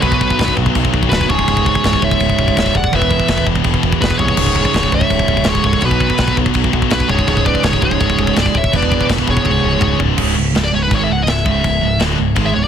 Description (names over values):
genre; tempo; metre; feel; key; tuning
heavy metal; 165 BPM; 4/4; straight; C# phrygian; A4 = 440 Hz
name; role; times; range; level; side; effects
high-gain lead guitar; melody; 0.0-12.7 s; B4 to F#5; -19 LUFS; left 1 dB; distortion
bluesy overdriven lead guitar; second line; 0.0-10.0 s; F#4 to D5; -24 LUFS; right 3 dB; distortion
hollow soft pad; sustained chords; 0.0-10.2 s; D3 to C#5; -28 LUFS; equal; none
scooped high-gain guitar; riff; 0.0-12.7 s; C#2 to G#3; -22 LUFS; left 13 dB; distortion
sludgy distorted guitar; riff; 0.0-12.7 s; C#2 to B3; -19 LUFS; right 12 dB; overdrive
overdriven picked electric bass; bass; 0.0-12.7 s; C#1 to B#1; -20 LUFS; left 1 dB; none
tight metal drum kit; drums; 0.0-12.4 s; china cymbal, crash cymbal, kick drum, snare drum, toms; -18 LUFS; left 1 dB; none
room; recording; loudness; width
little or no reverb; dense, heavily limited modern master; -12 LUFS; side -8 dB against mid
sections
0.0-10.2 A section; 10.2-12.7 B section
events
drum fill 9.5-10.2; lead electric guitar solo 10.2-12.7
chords
0.0 Bm; 1.3 C#m; 2.9 E; 4.4 C#m; 5.8 Bm; 7.1 C#m; 8.7 E; 9.5 C#m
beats
| 0.02 0.38 0.75 1.11 | 1.47 1.84 2.20 2.56 | 2.92 3.29 3.65 4.01 | 4.38 4.74 5.10 5.47 | 5.83 6.19 6.55 6.92 | 7.28 7.64 8.01 8.37 | 8.73 9.09 9.46 9.82 | 10.18 10.54 10.91 11.27 | 11.64 12.00 12.36